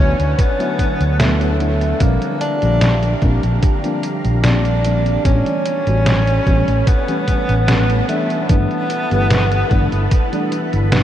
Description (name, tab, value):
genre	vaporwave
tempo	74 BPM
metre	4/4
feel	straight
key	unclear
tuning	A4 = 440 Hz
part	mellow tenor saxophone	melody	0.0-11.0 s	A3 to D4	-21 LUFS	equal	tape echo
part	mellow FM electric piano	accompaniment	0.0-11.0 s	E3 to G4	-22 LUFS	left 1 dB	ensemble chorus, ping-pong delay
part	soft string machine	sustained chords	0.0-11.0 s	D3 to B5	-27 LUFS	equal	ensemble chorus
part	fretless electric bass	bass	0.0-11.0 s	G1 to D2	-17 LUFS	equal	tube saturation, lush chorus
part	detuned 8-bit digital drum machine	drums	0.2-11.0 s	hi-hat, snare drum	-23 LUFS	equal	vintage 12-bit sampler grit
part	electronic kick drum	drums	0.4-10.3 s	none	-16 LUFS	equal	vintage 12-bit sampler grit
room	moderate huge ambient reverb, RT60 8.3 s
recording	dreamy mix soaked in reverb, cassette tape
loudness	-14 LUFS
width	side -11 dB against mid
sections	0.0-11.0 A section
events	none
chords	0.0 D6; 2.0 Bb6; 5.2 A9; 8.1 G69